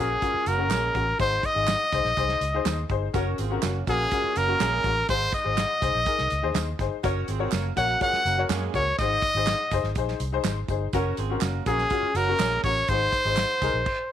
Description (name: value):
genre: uptempo 1960s-style soul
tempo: 123 BPM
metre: 4/4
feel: straight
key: Ab mixolydian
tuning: A4 = 440 Hz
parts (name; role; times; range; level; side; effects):
- brilliant trumpet; melody; 0.0-14.1 s; Ab4 to Gb5; -24 LUFS; equal; none
- warm horn section; second line; 0.0-12.7 s; Ab3 to Db5; -32 LUFS; right 12 dB; none
- clear upright piano; accompaniment; 0.0-13.8 s; Ab2 to Eb5; -30 LUFS; left 10 dB; none
- vintage muted fingered electric bass; bass; 0.0-13.8 s; Gb1 to Gb2; -29 LUFS; equal; none
- natural country drum kit; drums; 0.2-14.0 s; crash cymbal, hi-hat, kick drum, snare drum; -31 LUFS; right 2 dB; none
- tambourine and handclaps; percussion; 0.5-13.7 s; none; -38 LUFS; right 14 dB; none
room: little or no reverb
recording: 1960s-style stereo with parts hard left and right, vinyl crackle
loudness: -22 LUFS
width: side -10 dB against mid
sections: 0.0-14.1 A section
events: stop 13.9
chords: 0.0 Gb; 1.2 Ab; 3.1 Gb; 5.1 Ab; 7.0 Gb; 9.0 Ab; 10.9 Gb; 12.9 Ab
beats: 0.22 0.71 | 1.20 1.68 2.17 2.66 | 3.14 3.63 4.12 4.60 | 5.09 5.58 6.07 6.55 | 7.04 7.53 8.01 8.50 | 8.99 9.47 9.96 10.45 | 10.93 11.42 11.91 12.39 | 12.88 13.37 13.86